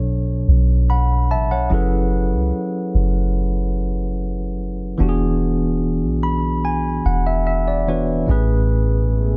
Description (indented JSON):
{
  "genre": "R&B",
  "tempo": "73 BPM",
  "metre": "4/4",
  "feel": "straight",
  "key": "unclear",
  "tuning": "A4 = 436 Hz",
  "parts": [
    { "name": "tine electric piano", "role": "accompaniment", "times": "0.0-9.4 s", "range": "A2 to B5", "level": "-23 LUFS", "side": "equal", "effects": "none" },
    { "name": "soft 808-style bass", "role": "bass", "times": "0.0-9.4 s", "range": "E1 to C#2", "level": "-22 LUFS", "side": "equal", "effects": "none" },
    { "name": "deep dark ambient pad", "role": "sustained chords", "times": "9.0-9.4 s", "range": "B2 to G#4", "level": "-35 LUFS", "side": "equal", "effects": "none" }
  ],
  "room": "digital ambience",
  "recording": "none",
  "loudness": "-19 LUFS",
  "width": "mono",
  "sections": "0.0-9.4 A section",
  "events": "tine electric piano fill 5.8-8.3",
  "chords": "0.0 Bm9; 1.7 F#m11; 5.0 E9; 8.3 Amaj9",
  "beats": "0.06 0.89 | 1.71 2.53 3.35 4.17 | 5.00 5.82 6.64 7.46 | 8.28 9.11"
}